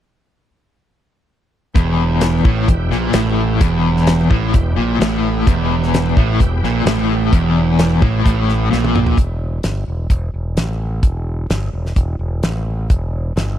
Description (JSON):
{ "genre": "classic rock", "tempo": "129 BPM", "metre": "4/4", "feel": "straight", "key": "E minor", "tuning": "A4 = 441 Hz", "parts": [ { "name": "bright tonewheel organ", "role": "sustained chords", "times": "1.7-9.1 s", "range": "E4 to G5", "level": "-30 LUFS", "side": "equal", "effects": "slow rotary speaker, overdrive, chorus vibrato" }, { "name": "overdriven electric guitar", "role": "riff", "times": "1.8-9.2 s", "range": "E2 to A#2", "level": "-19 LUFS", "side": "left 8 dB", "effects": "tremolo" }, { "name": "sludgy distorted guitar", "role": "riff", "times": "1.8-9.2 s", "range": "E2 to A#2", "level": "-20 LUFS", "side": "right 8 dB", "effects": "overdrive" }, { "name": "growling fingered electric bass", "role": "bass", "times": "1.8-13.6 s", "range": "E1 to A#1", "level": "-19 LUFS", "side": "equal", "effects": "overdrive" }, { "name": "damped 70s drum kit", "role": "drums", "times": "1.8-13.5 s", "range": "hi-hat, kick drum, snare drum, toms", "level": "-16 LUFS", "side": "equal", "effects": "none" } ], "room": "small room ambience", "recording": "none", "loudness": "-14 LUFS", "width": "side -11 dB against mid", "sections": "1.8-9.2 A section; 9.2-13.6 B section", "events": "drum fill 8.7-9.2", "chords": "1.8 Em" }